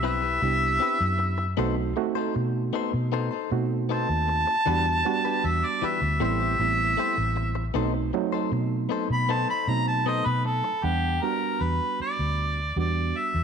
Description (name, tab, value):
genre	blues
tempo	78 BPM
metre	4/4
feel	straight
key	E minor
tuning	A4 = 440 Hz
part	warm harmonica	melody	0.0-13.4 s	G4 to B5	-26 LUFS	equal	overdrive
part	reed electric piano	accompaniment	0.0-13.4 s	F#3 to F#5	-30 LUFS	right 12 dB	none
part	direct-recorded clean electric guitar	stabs	0.0-10.7 s	E3 to C5	-32 LUFS	left 12 dB	none
part	vintage muted fingered electric bass	bass	0.0-13.4 s	A1 to B2	-27 LUFS	left 1 dB	none
room	light reverb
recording	1960s-style stereo with parts hard left and right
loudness	-23 LUFS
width	side -7 dB against mid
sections	0.0-10.8 A section; 10.8-13.4 B section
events	harmonica solo 0.0-10.8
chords	0.0 Cmaj7; 1.6 B7b9; 4.7 Em7; 6.2 Am7; 7.8 B7b9; 10.8 Em7